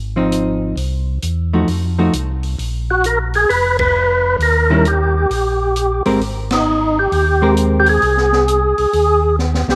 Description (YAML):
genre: soul jazz organ trio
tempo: 132 BPM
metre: 4/4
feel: swing 65% on 8ths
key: Ab major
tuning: A4 = 440 Hz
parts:
  - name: mellow tonewheel organ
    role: bass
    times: 0.0-9.8 s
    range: F1 to F2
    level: -21 LUFS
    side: equal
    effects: slow rotary speaker
  - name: hollow-body jazz guitar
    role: accompaniment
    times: 0.2-8.0 s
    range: Eb3 to Bb4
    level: -20 LUFS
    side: equal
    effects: none
  - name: open jazz drum kit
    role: drums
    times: 0.3-9.8 s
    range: hi-hat, kick drum, ride cymbal, snare drum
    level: -28 LUFS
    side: equal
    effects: none
  - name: percussive tonewheel organ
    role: melody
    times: 2.9-9.8 s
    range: Eb4 to Cb5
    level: -17 LUFS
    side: equal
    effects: slow rotary speaker, overdrive, chorus vibrato
room: moderate spring reverb, RT60 1.9 s, studio ambience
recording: none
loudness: -16 LUFS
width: mono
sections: 0.0-9.8 A section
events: band accent 3.7, 6.4; drum fill 9.4-9.8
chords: 0.0 Dbmaj9 (rootless); 0.8 Cdim; 1.7 F7b9; 2.6 Bb5; 4.4 Eb; 6.2 Abmaj9